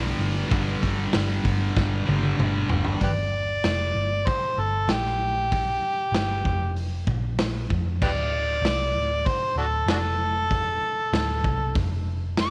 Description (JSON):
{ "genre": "garage rock duo or trio", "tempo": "96 BPM", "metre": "4/4", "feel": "straight", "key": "unclear", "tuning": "A4 = 440 Hz", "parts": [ { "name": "thick fuzz guitar", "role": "riff", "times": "0.0-3.0 s", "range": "G2 to G3", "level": "-29 LUFS", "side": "equal", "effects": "distortion" }, { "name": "hollow-body short-scale picked electric bass", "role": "bass", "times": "0.0-12.5 s", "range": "D1 to F2", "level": "-30 LUFS", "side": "equal", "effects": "none" }, { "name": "raw garage drum kit", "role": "drums", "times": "0.2-12.5 s", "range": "crash cymbal, hi-hat, kick drum, snare drum, toms", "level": "-30 LUFS", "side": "equal", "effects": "none" }, { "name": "overdriven harmonica", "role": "melody", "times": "3.0-12.5 s", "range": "D4 to D6", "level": "-28 LUFS", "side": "equal", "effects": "none" } ], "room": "little or no reverb", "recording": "none", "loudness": "-25 LUFS", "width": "mono", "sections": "0.0-3.0 A section; 3.0-12.5 B section", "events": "drum fill 1.8-3.0", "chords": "0.0 G5; 8.0 D5" }